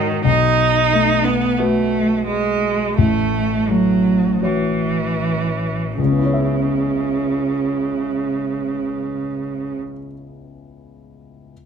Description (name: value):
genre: neoclassical piano and strings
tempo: 74-91 BPM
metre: 4/4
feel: rubato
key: C# minor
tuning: A4 = 440 Hz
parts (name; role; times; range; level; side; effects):
- rich cello; second line; 0.0-9.8 s; C#3 to D#4; -18 LUFS; right 4 dB; none
- warm grand piano; accompaniment; 0.0-11.5 s; A1 to E5; -21 LUFS; left 4 dB; none
room: moderate large studio reverb, RT60 1.3 s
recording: close, detailed microphones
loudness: -16 LUFS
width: side -7 dB against mid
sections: 0.0-6.0 A section; 6.0-9.1 B section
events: slowing down 0.0-6.0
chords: 0.3 B7; 3.0 F#m7/A; 6.0 C#m7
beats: | 0.26 0.93 1.60 2.28 | 2.97 3.69 4.43 5.19 | 5.98 6.77 7.56 8.34